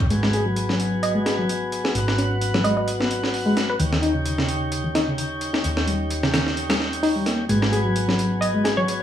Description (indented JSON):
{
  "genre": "breakbeat, breaks",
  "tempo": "130 BPM",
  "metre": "4/4",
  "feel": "swing 55% on 16ths",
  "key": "G# minor pentatonic",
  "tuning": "A4 = 440 Hz",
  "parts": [
    { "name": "tonewheel organ", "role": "sustained chords", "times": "0.0-9.0 s", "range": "D#3 to G#4", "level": "-27 LUFS", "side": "left 1 dB", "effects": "slow rotary speaker, sidechain pumping" },
    { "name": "breakbeat sampler-style drum kit", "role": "drums", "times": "0.0-9.0 s", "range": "hi-hat, kick drum, snare drum", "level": "-26 LUFS", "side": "right 1 dB", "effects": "high-pass filter on hats, small room ambience, high-pass filter on snare, high-pass filter on kick" },
    { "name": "reed electric piano", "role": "riff", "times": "0.1-8.9 s", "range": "C#3 to G#4", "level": "-24 LUFS", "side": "left 1 dB", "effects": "fast tremolo, vintage 12-bit sampler grit, low-pass filter, tape echo" },
    { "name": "hollow-body short-scale fingered electric bass", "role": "bass", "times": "0.1-9.0 s", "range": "G#1 to D#2", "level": "-28 LUFS", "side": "right 1 dB", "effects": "low-pass filter" },
    { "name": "hollow square pluck", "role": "melody", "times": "1.0-3.9, 8.4-8.9 s", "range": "B4 to D#5", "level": "-26 LUFS", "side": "right 3 dB", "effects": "chorus, AM radio sound, vintage 12-bit sampler grit, tape echo" }
  ],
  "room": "light reverb, digital ambience",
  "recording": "vinyl crackle, studio ambience",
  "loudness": "-20 LUFS",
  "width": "side -10 dB against mid",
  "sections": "0.1-9.0 A section",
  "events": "filter sweep on reed electric piano 0.1-9.0",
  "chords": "0.1 G#m7; 3.8 D#7; 7.5 G#m7"
}